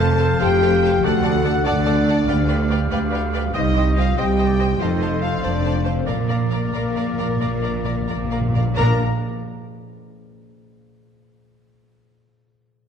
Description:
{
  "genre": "cinematic, heroic adventure film score",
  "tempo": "87-96 BPM (dotted quarters)",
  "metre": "12/8",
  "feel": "straight",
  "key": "Bb major",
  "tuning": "A4 = 441 Hz",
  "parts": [
    { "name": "warm symphonic violin section", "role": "melody", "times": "0.0-9.0 s", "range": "Bb4 to Bb5", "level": "-31 LUFS", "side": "left 4 dB", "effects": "none" },
    { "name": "clear clarinet", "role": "second line", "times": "0.0-9.0 s", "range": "G4 to C5", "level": "-32 LUFS", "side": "left 1 dB", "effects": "none" },
    { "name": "clear oboe", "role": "second line", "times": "0.0-9.0 s", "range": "C5 to F#5", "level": "-31 LUFS", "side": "equal", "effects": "none" },
    { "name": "mellow hollow silver concert flute", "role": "second line", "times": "0.0-9.0 s", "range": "Bb4 to Bb5", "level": "-31 LUFS", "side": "left 2 dB", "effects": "none" },
    { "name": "warm symphonic violin section", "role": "second line", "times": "0.0-9.0 s", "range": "Bb4 to Bb5", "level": "-33 LUFS", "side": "left 1 dB", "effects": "none" },
    { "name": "warm symphonic viola section", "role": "accompaniment", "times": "0.0-9.0 s", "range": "D4 to Eb5", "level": "-30 LUFS", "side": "right 2 dB", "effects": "none" },
    { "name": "mellow French horn section", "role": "sustained chords", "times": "0.0-9.0 s", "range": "Bb3 to A4", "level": "-24 LUFS", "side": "left 3 dB", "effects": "none" },
    { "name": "concert harp", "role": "arpeggios", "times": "0.0-11.5 s", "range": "F2 to D6", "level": "-28 LUFS", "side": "left 6 dB", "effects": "none" },
    { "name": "clear symphonic cello section", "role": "bass", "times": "0.0-9.0 s", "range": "C2 to Bb2", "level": "-24 LUFS", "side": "right 3 dB", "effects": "none" },
    { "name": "rich symphonic double bass section", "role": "bass", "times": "0.0-9.0 s", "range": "F1 to D2", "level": "-23 LUFS", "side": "right 3 dB", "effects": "none" },
    { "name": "timpani", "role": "percussion", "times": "6.1-9.0 s", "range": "Bb2", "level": "-26 LUFS", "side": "equal", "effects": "none" }
  ],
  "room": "wet scoring stage reverb, RT60 1.8 s",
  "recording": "dark, warm production, lossy compression artefacts",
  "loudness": "-17 LUFS",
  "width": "side -7 dB against mid",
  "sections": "0.0-8.8 A section; 8.8-11.5 B section",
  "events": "slowing down 4.4-8.8; timpani fill 6.1-8.8",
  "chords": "0.0 F; 1.0 D; 2.3 G7/D; 3.5 Cm; 4.8 F7; 6.1 Bb"
}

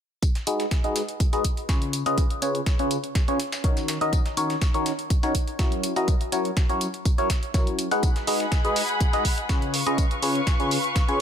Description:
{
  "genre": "piano house",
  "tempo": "123 BPM",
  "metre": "4/4",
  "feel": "straight",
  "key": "G# minor",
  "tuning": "A4 = 440 Hz",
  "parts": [
    { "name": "dusty soul sampler-style drum kit", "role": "drums", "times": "0.2-11.1 s", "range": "hi-hat, snare drum, tambourine", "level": "-35 LUFS", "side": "left 2 dB", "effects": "high-pass filter on perc, high-pass filter on snare, high-pass filter on hats, high-pass filter on room" },
    { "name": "electronic hi-hat", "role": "drums", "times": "0.2-11.2 s", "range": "none", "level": "-32 LUFS", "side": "right 2 dB", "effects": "none" },
    { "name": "electronic kick drum", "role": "drums", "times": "0.2-11.1 s", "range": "none", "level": "-23 LUFS", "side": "equal", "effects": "none" },
    { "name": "barking FM electric piano", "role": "riff", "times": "0.5-11.2 s", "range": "C#3 to F#5", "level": "-25 LUFS", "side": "left 1 dB", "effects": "phaser, sidechain pumping, low-pass filter, tape echo" },
    { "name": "muted studio violin section", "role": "sustained chords", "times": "8.0-11.2 s", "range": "G#4 to C#6", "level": "-28 LUFS", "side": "left 2 dB", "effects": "sidechain pumping" }
  ],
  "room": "light reverb",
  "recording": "none",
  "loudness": "-22 LUFS",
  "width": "side -8 dB against mid",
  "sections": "0.2-11.2 A section",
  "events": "filter sweep on FM electric piano 0.2-11.2",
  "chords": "0.2 G#m7; 1.9 C#7; 3.9 D#m7; 5.8 F#7; 8.0 G#m7; 9.7 C#7"
}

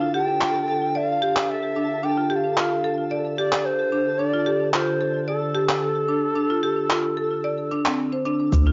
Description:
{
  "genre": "organic downtempo",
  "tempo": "111 BPM",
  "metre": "4/4",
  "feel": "straight",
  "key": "unclear",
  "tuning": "A4 = 439 Hz",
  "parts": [
    { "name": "breathy bright low ney", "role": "melody", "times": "0.0-8.0 s", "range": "A4 to G5", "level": "-28 LUFS", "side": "equal", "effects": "analog delay" },
    { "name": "warbly tape-like pad", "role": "sustained chords", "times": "0.0-8.7 s", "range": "D3 to C5", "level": "-33 LUFS", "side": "equal", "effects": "chorus, built-in reverb, sidechain pumping, cassette tape, plate reverb" },
    { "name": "marimba with hard mallets", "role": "arpeggios", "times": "0.0-8.7 s", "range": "C4 to D5", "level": "-27 LUFS", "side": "equal", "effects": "cassette tape, tape echo, plate reverb" },
    { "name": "twinkling granular texture", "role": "texture", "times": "0.0-8.5 s", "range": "A4", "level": "-41 LUFS", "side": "equal", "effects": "built-in reverb, cassette tape, plate reverb" },
    { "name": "electronic handclaps and shaker", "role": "drums", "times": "0.4-8.6 s", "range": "none", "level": "-26 LUFS", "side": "equal", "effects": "cassette tape" },
    { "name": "warm sub bass", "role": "bass", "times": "8.5-8.7 s", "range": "D2", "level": "-20 LUFS", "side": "equal", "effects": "none" },
    { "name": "electronic kick drum", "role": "drums", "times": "8.5-8.6 s", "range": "none", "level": "-24 LUFS", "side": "equal", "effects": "cassette tape" }
  ],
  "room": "moderate studio reverb, RT60 0.5 s",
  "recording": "home recording on cassette, nothing above 7.5 kHz",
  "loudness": "-23 LUFS",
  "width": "mono",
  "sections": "0.0-8.5 A section",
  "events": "none",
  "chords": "0.0 F/D"
}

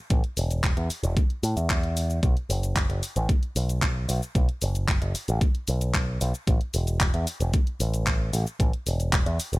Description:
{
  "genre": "nu-disco, nu disco",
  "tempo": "113 BPM",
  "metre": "4/4",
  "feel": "straight",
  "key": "unclear",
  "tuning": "A4 = 441 Hz",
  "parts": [
    { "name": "picked electric bass with an envelope filter", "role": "bass", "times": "0.1-9.6 s", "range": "E1 to A2", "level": "-25 LUFS", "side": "equal", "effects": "none" },
    { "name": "electronic kick drum", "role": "drums", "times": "0.1-9.2 s", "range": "none", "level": "-24 LUFS", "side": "equal", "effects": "overdrive" },
    { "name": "pop drum kit", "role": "drums", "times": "0.1-9.6 s", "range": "cabasa, handclaps, hi-hat", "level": "-30 LUFS", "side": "left 1 dB", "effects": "none" }
  ],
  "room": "digital ambience",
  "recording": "none",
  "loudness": "-23 LUFS",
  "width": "side -20 dB against mid",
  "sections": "0.0-9.6 A section",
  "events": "none",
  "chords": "none"
}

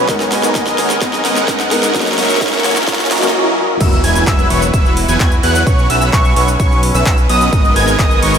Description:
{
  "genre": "EDM, festival progressive house",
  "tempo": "129 BPM",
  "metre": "4/4",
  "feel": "straight",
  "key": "unclear",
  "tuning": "A4 = 440 Hz",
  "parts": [
    { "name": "felt-muted upright piano", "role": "accompaniment", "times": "0.0-3.8 s", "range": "G#2 to B4", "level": "-21 LUFS", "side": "left 1 dB", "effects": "sidechain pumping, tape echo" },
    { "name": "warm studio string section", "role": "sustained chords", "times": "0.0-8.4 s", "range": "G#3 to C#6", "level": "-23 LUFS", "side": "left 2 dB", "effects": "sidechain pumping" },
    { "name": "supersaw chords", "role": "riff", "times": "0.0-8.3 s", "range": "F#3 to G#5", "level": "-17 LUFS", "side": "right 1 dB", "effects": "phaser, sidechain pumping, tape echo" },
    { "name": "fat analog bass", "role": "bass", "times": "0.0-8.4 s", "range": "E1 to G#2", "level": "-19 LUFS", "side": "equal", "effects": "sidechain pumping" },
    { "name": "riser, swell and impact", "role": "sound effects", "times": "0.3-5.7 s", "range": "none", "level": "-24 LUFS", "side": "right 1 dB", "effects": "none" },
    { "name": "big-room dance drum kit", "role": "drums", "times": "0.1-8.4 s", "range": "cabasa, crash cymbal, handclaps, hi-hat, snare drum", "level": "-19 LUFS", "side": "equal", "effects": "high-pass filter on snare, high-pass filter on hats, high-pass filter on perc, high-pass filter on cymbals, high-pass filter on room" },
    { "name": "electronic kick drum", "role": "drums", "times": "0.1-8.1 s", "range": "none", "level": "-15 LUFS", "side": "equal", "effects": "none" },
    { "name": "wide unison lead", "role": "arpeggios", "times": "3.8-8.3 s", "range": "C#6 to G#6", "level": "-17 LUFS", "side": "equal", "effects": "sidechain pumping, tape echo" }
  ],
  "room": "wet huge ambient reverb, RT60 4.0 s",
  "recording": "dreamy mix soaked in reverb, high-pass filter",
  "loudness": "-11 LUFS",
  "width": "side -7 dB against mid",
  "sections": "0.0-3.8 A section; 3.8-8.4 B section",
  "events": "build-up 0.0-3.8; drum fill 0.0-3.3; swell 2.9-3.8; drop 3.8-8.4; impact 3.8-5.7",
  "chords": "0.1 G#madd9; 1.9 F#; 3.8 Esus2; 5.7 Bsus2; 7.5 G#madd9"
}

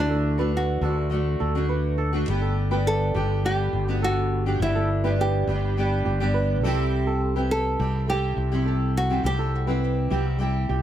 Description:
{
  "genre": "acoustic pop",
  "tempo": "103 BPM",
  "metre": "4/4",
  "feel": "straight",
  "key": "G major",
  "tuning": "A4 = 440 Hz",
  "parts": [
    { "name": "nylon-string guitar", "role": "melody", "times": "0.0-10.8 s", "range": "D4 to A4", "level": "-28 LUFS", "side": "right 1 dB", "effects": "tape echo" },
    { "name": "fingerpicked steel-string acoustic guitar", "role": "accompaniment", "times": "0.0-10.8 s", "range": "G2 to G4", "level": "-27 LUFS", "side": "equal", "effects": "double-tracked left and right" },
    { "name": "fretless electric bass", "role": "bass", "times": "0.0-10.8 s", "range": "G1 to D2", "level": "-25 LUFS", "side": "equal", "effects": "none" },
    { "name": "flamenco guitar", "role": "arpeggios", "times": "0.1-10.8 s", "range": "G4 to B4", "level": "-32 LUFS", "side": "right 4 dB", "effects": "none" }
  ],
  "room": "light reverb",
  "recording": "none",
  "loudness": "-21 LUFS",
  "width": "side -11 dB against mid",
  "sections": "0.0-10.8 A section",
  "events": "none",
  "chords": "0.0 D; 2.3 G; 6.6 C"
}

